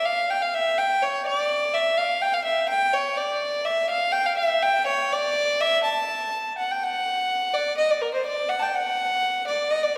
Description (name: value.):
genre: klezmer.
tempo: 125 BPM.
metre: 2/4.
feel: straight.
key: unclear.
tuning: A4 = 440 Hz.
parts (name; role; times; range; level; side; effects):
rich violin; solo; 0.0-10.0 s; Bb4 to A5; -24 LUFS; equal; none.
room: wet concert hall reverb, RT60 2.1 s.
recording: recorded in a church or concert hall.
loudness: -24 LUFS.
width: mono.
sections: 0.0-6.8 A section; 6.8-10.0 B section.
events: none.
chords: none.